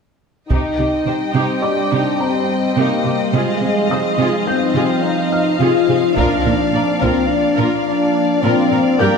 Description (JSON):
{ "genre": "cinematic, hybrid orchestral and electronic film score", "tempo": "106 BPM", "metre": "5/4", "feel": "straight", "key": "C minor", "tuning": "A4 = 438 Hz", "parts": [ { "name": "rich symphonic violin section", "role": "second line", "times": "0.5-9.2 s", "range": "D5 to G5", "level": "-23 LUFS", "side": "left 4 dB", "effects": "none" }, { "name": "rich symphonic viola section", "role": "accompaniment", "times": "0.5-9.2 s", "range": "Eb4 to D5", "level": "-24 LUFS", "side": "right 1 dB", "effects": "none" }, { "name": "glassy FM pad", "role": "sustained chords", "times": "1.0-9.2 s", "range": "F3 to D5", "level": "-21 LUFS", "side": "equal", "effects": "ensemble chorus, built-in reverb" }, { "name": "warm French horn section", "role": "sustained chords", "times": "0.5-9.2 s", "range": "Ab3 to F4", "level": "-18 LUFS", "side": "left 3 dB", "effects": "none" }, { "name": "rich symphonic cello section", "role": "bass", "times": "0.5-9.1 s", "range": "G2 to C3", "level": "-22 LUFS", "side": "right 5 dB", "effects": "none" }, { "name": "taiko ensemble", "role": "drums", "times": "0.5-1.6, 6.2-7.3 s", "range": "none", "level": "-22 LUFS", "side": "right 1 dB", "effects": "none" }, { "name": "felt-muted upright piano", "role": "texture", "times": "1.6-9.2 s", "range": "Eb5 to G6", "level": "-28 LUFS", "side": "equal", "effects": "tape echo" } ], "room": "moderate concert hall reverb, RT60 2.0 s", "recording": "none", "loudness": "-14 LUFS", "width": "side -5 dB against mid", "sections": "0.5-9.2 A section", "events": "none", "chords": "0.5 Cm; 3.3 Fm7/C; 6.2 Bb" }